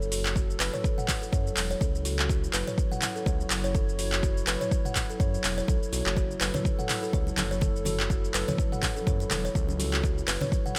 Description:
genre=afro house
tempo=124 BPM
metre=4/4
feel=swing 57% on 16ths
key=F# minor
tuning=A4 = 440 Hz
part: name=dark analog pad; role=sustained chords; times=0.0-10.8 s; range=F#3 to C#5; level=-38 LUFS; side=equal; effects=chorus, sidechain pumping
part: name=round analog bass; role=bass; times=0.0-10.4 s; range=E1 to F#2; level=-34 LUFS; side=equal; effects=sidechain pumping
part: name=deep house drum kit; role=drums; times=0.0-10.8 s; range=handclaps, hi-hat, shaker, toms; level=-33 LUFS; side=equal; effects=overdrive
part: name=buzzing kalimba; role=arpeggios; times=0.1-10.8 s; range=F#4 to F#5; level=-37 LUFS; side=equal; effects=sidechain pumping, dub echo
part: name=electronic kick drum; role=drums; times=0.4-10.6 s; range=none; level=-30 LUFS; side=equal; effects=overdrive
part: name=congas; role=percussion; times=6.5-10.5 s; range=none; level=-38 LUFS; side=equal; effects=none
room=little or no reverb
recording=none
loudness=-28 LUFS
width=mono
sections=0.0-10.8 A section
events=none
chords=0.0 F#m7

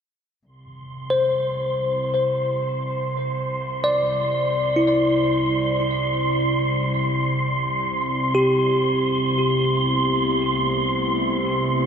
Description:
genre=ambient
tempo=free time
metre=none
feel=none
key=C major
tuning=A4 = 440 Hz
part: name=glassy FM pad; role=sustained chords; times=0.5-11.9 s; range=C3 to C5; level=-31 LUFS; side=left 2 dB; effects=ensemble chorus, built-in reverb
part: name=rich studio cello section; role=bass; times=0.5-11.9 s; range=C2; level=-38 LUFS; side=left 1 dB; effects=none
part: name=analog drone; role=drone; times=0.7-11.9 s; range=C3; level=-26 LUFS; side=right 1 dB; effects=chorus
part: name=wind-like tuned noise texture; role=texture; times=0.9-11.9 s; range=C6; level=-25 LUFS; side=right 2 dB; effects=built-in reverb
part: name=bell-like tine electric piano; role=arpeggios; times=1.1-11.9 s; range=E4 to D5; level=-22 LUFS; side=left 1 dB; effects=tape echo
room=wet huge ambient reverb, RT60 7.5 s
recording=none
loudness=-19 LUFS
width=side -7 dB against mid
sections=0.5-11.9 A section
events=fade-in on ambient pad 0.5-11.9; fade-in on cello section 0.5-11.9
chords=0.5 C; 8.7 Amadd9/C

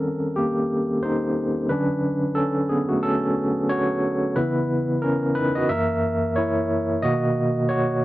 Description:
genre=R&B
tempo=90 BPM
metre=4/4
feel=swing 59% on 16ths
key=unclear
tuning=A4 = 440 Hz
part: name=overdriven tine electric piano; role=solo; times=0.0-8.0 s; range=F#2 to E5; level=-20 LUFS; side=equal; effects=fast tremolo
room=moderate booth ambience, RT60 0.2 s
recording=dry, close 1970s-style studio recording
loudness=-20 LUFS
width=side -16 dB against mid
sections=0.0-8.0 A section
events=tine electric piano solo 0.0-8.0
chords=0.0 D#7; 1.7 Dmaj7; 4.4 C#m7; 5.7 F#7; 7.0 Bmaj7

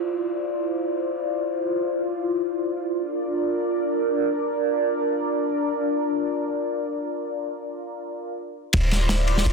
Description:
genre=drum and bass, jungle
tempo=free time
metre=none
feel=none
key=unclear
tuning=A4 = 440 Hz
part: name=lush unison pad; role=sustained chords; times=0.0-9.5 s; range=D4 to D5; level=-24 LUFS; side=equal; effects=chorus, phaser
part: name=warm 808-style bass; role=bass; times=8.7-9.5 s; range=D1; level=-21 LUFS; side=equal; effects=none
part: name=crunchy breakbeat drum kit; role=drums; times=8.7-9.5 s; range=crash cymbal, kick drum, ride cymbal, snare drum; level=-23 LUFS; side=equal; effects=none
room=moderate echo chamber reverb, RT60 2.3 s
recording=dense, heavily limited modern master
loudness=-23 LUFS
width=side -4 dB against mid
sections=0.0-8.7 A section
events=none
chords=0.0 Dm9; 3.0 Bb/D; 8.7 Dm9

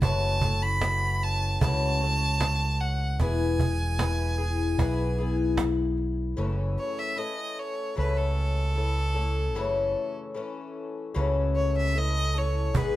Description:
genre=acoustic folk duo or small band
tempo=75 BPM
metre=4/4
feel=straight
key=F# dorian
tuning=A4 = 440 Hz
part: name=clear fiddle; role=melody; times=0.0-13.0 s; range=A4 to B5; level=-31 LUFS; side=right 1 dB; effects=none
part: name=picked twelve-string acoustic guitar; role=accompaniment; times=0.0-13.0 s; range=F#2 to A4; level=-30 LUFS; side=left 4 dB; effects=none
part: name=fingered electric bass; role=bass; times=0.0-13.0 s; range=E1 to C#2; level=-27 LUFS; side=right 1 dB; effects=none
part: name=cajon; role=percussion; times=0.0-6.1, 12.7-12.9 s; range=none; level=-28 LUFS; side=right 2 dB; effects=none
room=light reverb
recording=none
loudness=-24 LUFS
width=side -15 dB against mid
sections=0.0-6.4 A section; 6.4-13.0 B section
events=fiddle solo 6.4-13.0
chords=0.0 F#m7; 3.2 E; 6.4 F#m7

